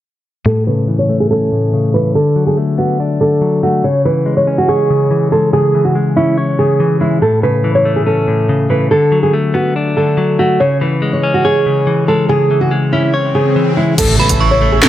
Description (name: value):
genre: hip hop, drill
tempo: 142 BPM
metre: 4/4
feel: half-time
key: C# phrygian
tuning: A4 = 440 Hz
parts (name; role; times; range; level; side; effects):
- nylon-string guitar; melody; 0.5-14.9 s; E4 to C#5; -14 LUFS; right 2 dB; low-pass filter
- direct-recorded clean electric guitar; accompaniment; 0.5-14.9 s; A2 to C#5; -14 LUFS; left 2 dB; low-pass filter
- swell and impact; sound effects; 12.7-14.9 s; none; -22 LUFS; left 1 dB; none
- warm brass ensemble; sustained chords; 14.0-14.9 s; A3 to E5; -21 LUFS; right 5 dB; stereo widening
- distorted 808-style bass; bass; 14.0-14.9 s; A1 to E3; -16 LUFS; equal; distortion
- drill drum kit; drums; 14.0-14.9 s; crash cymbal, finger snaps, hi-hat, snare drum; -14 LUFS; equal; none
- metallic FM bell; second line; 14.2-14.9 s; A5 to C#6; -17 LUFS; right 7 dB; chorus, digital delay
room: light reverb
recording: dark, warm production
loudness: -11 LUFS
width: side -12 dB against mid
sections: 0.5-14.0 A section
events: filter sweep 0.5-14.0; swell 12.7-14.0; impact 14.0-14.9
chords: 0.5 A; 2.2 D6; 3.8 C#m; 7.2 A; 8.9 D6; 10.6 C#m; 14.0 A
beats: | 0.46 0.88 1.31 1.73 | 2.15 2.57 3.00 3.42 | 3.84 4.26 4.69 5.11 | 5.53 5.95 6.38 6.80 | 7.22 7.64 8.07 8.49 | 8.91 9.33 9.76 10.18 | 10.60 11.02 11.45 11.87 | 12.29 12.71 13.14 13.56 | 13.98 14.40 14.83